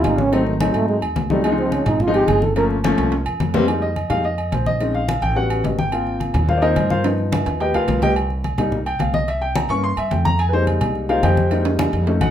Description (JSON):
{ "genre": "Afro-Cuban jazz", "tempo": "214 BPM", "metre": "4/4", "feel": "straight", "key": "F minor", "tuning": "A4 = 440 Hz", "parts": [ { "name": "breathy trombone", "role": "melody", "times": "0.0-2.7 s", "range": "Eb3 to Bb4", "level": "-20 LUFS", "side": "right 3 dB", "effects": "none" }, { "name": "warm upright piano", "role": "accompaniment", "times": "0.0-12.3 s", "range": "E3 to Db6", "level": "-20 LUFS", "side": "left 2 dB", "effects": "none" }, { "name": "upright bass", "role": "bass", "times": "0.0-12.3 s", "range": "G1 to Ab2", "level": "-22 LUFS", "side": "equal", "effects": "none" }, { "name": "congas", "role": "percussion", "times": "0.0-12.3 s", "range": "none", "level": "-25 LUFS", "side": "left 3 dB", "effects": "none" }, { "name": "timbales and agogo bells", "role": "percussion", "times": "0.0-12.3 s", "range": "none", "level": "-26 LUFS", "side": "right 4 dB", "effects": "none" } ], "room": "moderate large studio reverb, RT60 0.9 s", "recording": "minimal, uncompressed stereo recording", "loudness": "-17 LUFS", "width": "side -10 dB against mid", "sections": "0.0-3.7 A section; 3.7-12.3 A section", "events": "trombone solo 0.0-3.7; drum fill 3.0-3.7, 7.0-8.2, 11.5-12.3; upright piano solo 3.7-12.3", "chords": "0.3 Ab7b9; 1.4 Dbmaj9; 2.6 Gm7b5; 3.1 C7; 3.7 Fm11; 4.8 Bbm11; 5.4 A13; 5.9 Ab69; 7.0 G7alt; 8.2 Cm7; 9.3 C7b9; 10.4 Fm11" }